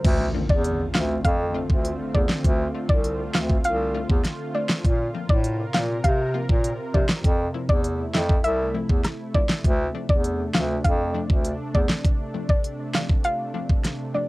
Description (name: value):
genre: dancehall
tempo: 100 BPM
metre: 4/4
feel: straight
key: D minor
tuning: A4 = 439 Hz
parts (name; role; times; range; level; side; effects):
- lush unison pad; sustained chords; 0.0-14.3 s; C3 to Bb4; -32 LUFS; right 1 dB; chorus, sidechain pumping, cassette tape
- warm bass clarinet; bass; 0.0-11.9 s; C2 to C3; -25 LUFS; equal; none
- pop drum kit; drums; 0.0-14.0 s; crash cymbal, hi-hat, kick drum, rim click, snare drum; -21 LUFS; equal; none
- impact; sound effects; 0.0-2.4 s; none; -31 LUFS; equal; none
- analog pluck; accompaniment; 0.3-14.3 s; F3 to F4; -32 LUFS; left 6 dB; chorus, cassette tape
- soft round pluck; melody; 0.5-14.3 s; D5 to F5; -28 LUFS; equal; chorus, cassette tape, analog delay
room: little or no reverb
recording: home recording on cassette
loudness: -20 LUFS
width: side -20 dB against mid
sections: 0.0-14.3 A section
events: impact 0.0-2.4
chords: 0.0 Dm7; 4.8 Bbsus2; 7.2 Fmaj7; 9.6 Dm7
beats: | 0.04 0.65 1.25 1.84 | 2.44 3.04 3.65 4.25 | 4.84 5.45 6.04 6.64 | 7.25 7.84 8.45 9.04 | 9.64 10.24 10.85 11.45 | 12.04 12.64 13.24 13.85